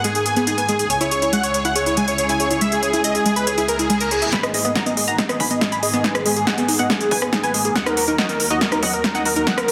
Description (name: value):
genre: uplifting trance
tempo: 140 BPM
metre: 4/4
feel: straight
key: G# minor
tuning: A4 = 441 Hz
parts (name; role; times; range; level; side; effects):
- dense compressed supersaw; melody; 0.0-9.7 s; F#4 to B5; -24 LUFS; equal; sidechain pumping, low-pass filter, tape echo
- muted studio string section; sustained chords; 0.0-9.7 s; C#2 to A#4; -30 LUFS; equal; sidechain pumping
- analog pluck; arpeggios; 0.0-9.7 s; F#3 to C#5; -26 LUFS; equal; chorus, sidechain pumping, tape echo
- big-room dance drum kit; drums; 0.0-9.7 s; hi-hat, rim click, snare drum; -24 LUFS; equal; overdrive
- reverse cymbal; sound effects; 3.8-4.3 s; none; -31 LUFS; equal; none
- analog pluck; second line; 4.3-9.7 s; G#4 to B5; -28 LUFS; equal; chorus, sidechain pumping, tape echo
- electronic kick drum; drums; 4.3-9.6 s; none; -31 LUFS; equal; overdrive, high-pass filter on kick, high-pass filter on room
room: moderate lush hall reverb, RT60 1.6 s, digital ambience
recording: dense, heavily limited modern master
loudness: -19 LUFS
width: mono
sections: 0.0-4.3 A section; 4.3-9.7 B section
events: reverse cymbal 3.8-4.3; build-up 4.3-9.7; drum fill 4.3-9.7; filter sweep on supersaw synth 4.3-9.7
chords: 0.0 G#madd9; 0.9 C#m; 4.3 G#madd9; 7.8 D#m